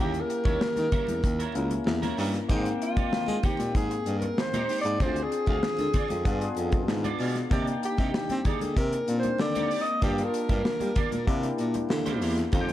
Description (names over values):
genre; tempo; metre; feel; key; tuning
polished 1980s jazz-funk pop; 96 BPM; 4/4; straight; unclear; A4 = 445 Hz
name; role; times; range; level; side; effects
breathy alto saxophone; melody; 0.0-11.8 s; F4 to Eb5; -30 LUFS; equal; tape echo
barky tine electric piano; accompaniment; 0.0-12.7 s; Ab3 to A5; -32 LUFS; left 3 dB; analog chorus
electric guitar at the edge of break-up; riff; 0.0-12.7 s; G3 to F5; -37 LUFS; right 6 dB; ensemble chorus
mellow baritone saxophone; bass; 0.0-12.7 s; Db2 to C4; -30 LUFS; equal; none
modern studio drum kit; drums; 0.1-12.7 s; hi-hat, kick drum, snare drum; -29 LUFS; equal; none
congas; percussion; 0.1-12.7 s; none; -39 LUFS; left 2 dB; none
room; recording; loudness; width
light reverb, studio ambience; dark, warm production; -24 LUFS; side -13 dB against mid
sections
0.0-12.7 A section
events
alto saxophone solo 0.0-12.7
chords
0.0 Eb7b9; 2.5 Abmaj7; 5.0 Dm7b5; 6.3 G7b9; 7.5 Cm9; 10.0 Gm7; 11.3 C7